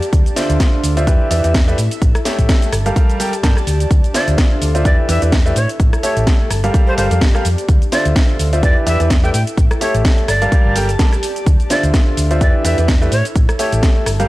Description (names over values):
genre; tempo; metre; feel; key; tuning
piano house; 127 BPM; 4/4; swing 56% on 16ths; D minor; A4 = 440 Hz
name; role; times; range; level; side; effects
house drum kit; drums; 0.0-14.3 s; hi-hat, rim click, shaker, snare drum; -22 LUFS; equal; studio reverb
airy breathy pad; texture; 0.0-14.3 s; D4 to A5; -26 LUFS; left 1 dB; chorus, sidechain pumping
hollow-body short-scale fingered electric bass; bass; 0.1-14.2 s; G1 to A2; -17 LUFS; equal; sidechain pumping
electronic kick drum; drums; 0.1-13.9 s; none; -13 LUFS; equal; studio reverb
clear grand piano; riff; 0.4-14.3 s; D3 to A5; -20 LUFS; equal; sidechain pumping, analog delay
breathy bright jazz flute; melody; 4.1-13.7 s; C5 to G5; -22 LUFS; right 1 dB; analog delay
room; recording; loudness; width
little or no reverb; dry, gritty hardware recording, transformer saturation, cassette tape; -12 LUFS; side -18 dB against mid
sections
0.0-14.3 A section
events
none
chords
0.1 Dm9; 1.1 Em7; 1.8 A7; 2.7 Gm9; 3.9 Dm9; 4.9 Em7; 5.6 A7; 6.5 Gm9; 7.7 Dm9; 8.6 Em7; 9.3 A7; 10.3 Gm9; 11.5 Dm9; 12.4 Em7; 13.1 A7